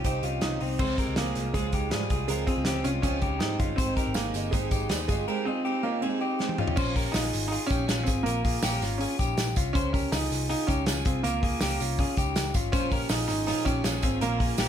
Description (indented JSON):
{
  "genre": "jangly indie pop",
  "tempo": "161 BPM",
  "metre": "4/4",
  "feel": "straight",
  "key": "Bb dorian",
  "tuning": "A4 = 440 Hz",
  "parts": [
    { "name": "picked twelve-string acoustic guitar", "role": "accompaniment", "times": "0.0-6.8, 12.7-14.7 s", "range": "Bb2 to G4", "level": "-34 LUFS", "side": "right 8 dB", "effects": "none" },
    { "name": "electric guitar through a small old amp", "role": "arpeggios", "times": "0.0-14.7 s", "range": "C4 to C5", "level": "-32 LUFS", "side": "left 5 dB", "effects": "warbly pitch drift, tape echo" },
    { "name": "vintage muted picked electric bass", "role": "bass", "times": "0.0-14.7 s", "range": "G1 to Ab2", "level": "-32 LUFS", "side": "equal", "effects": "none" },
    { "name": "loose indie drum kit", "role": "drums", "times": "0.0-14.7 s", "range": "crash cymbal, hi-hat, kick drum, snare drum, toms", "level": "-29 LUFS", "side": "equal", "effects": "none" },
    { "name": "warm upright piano", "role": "melody", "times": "0.4-14.7 s", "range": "G3 to Eb4", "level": "-31 LUFS", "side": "right 2 dB", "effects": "none" },
    { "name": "tambourine", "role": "percussion", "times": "3.8-14.7 s", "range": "none", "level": "-40 LUFS", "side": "right 8 dB", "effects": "none" }
  ],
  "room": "moderate large studio reverb, RT60 0.8 s",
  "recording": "none",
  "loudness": "-25 LUFS",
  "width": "side -9 dB against mid",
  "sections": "0.8-6.8 A section; 6.8-14.7 B section",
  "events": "drum fill 6.4-6.8",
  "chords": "0.0 Cm; 0.8 Dbmaj7; 6.8 Bbm",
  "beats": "0.05 0.42 | 0.80 1.17 1.54 1.92 | 2.29 2.67 3.04 3.41 | 3.79 4.16 4.53 4.91 | 5.28 5.65 6.03 6.40 | 6.77 7.15 7.52 7.89 | 8.26 8.63 9.01 9.38 | 9.75 10.12 10.50 10.87 | 11.24 11.61 11.98 12.36 | 12.73 13.10 13.47 13.84 | 14.22 14.59"
}